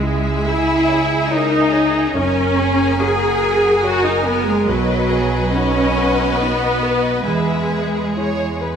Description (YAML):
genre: cinematic, emotional film score for orchestra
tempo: 70 BPM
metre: 3/4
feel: rubato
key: unclear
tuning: A4 = 439 Hz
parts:
  - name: warm studio violin section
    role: second line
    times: 0.0-8.8 s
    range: G#4 to G#5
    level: -23 LUFS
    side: left 4 dB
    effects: none
  - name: dark concert grand piano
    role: accompaniment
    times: 0.0-8.8 s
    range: B1 to C#5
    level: -24 LUFS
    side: equal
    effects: none
  - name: warm studio viola section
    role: accompaniment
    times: 0.0-8.8 s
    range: F#3 to G#4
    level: -18 LUFS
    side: equal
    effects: none
  - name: rich studio cello section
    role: bass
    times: 0.0-8.8 s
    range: F#3 to G#4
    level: -24 LUFS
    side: right 1 dB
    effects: none
  - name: rich studio double bass section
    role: bass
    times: 0.0-8.8 s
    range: F#1 to E2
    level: -24 LUFS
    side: right 3 dB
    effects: none
  - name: warm studio violin section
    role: melody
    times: 0.5-8.8 s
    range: F#4 to B4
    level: -26 LUFS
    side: left 3 dB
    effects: none
room: moderate scoring stage reverb, RT60 1.9 s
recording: none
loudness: -15 LUFS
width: side -7 dB against mid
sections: 0.0-8.8 A section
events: none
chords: 0.0 C#madd9; 2.2 F#add9; 4.7 B; 7.3 E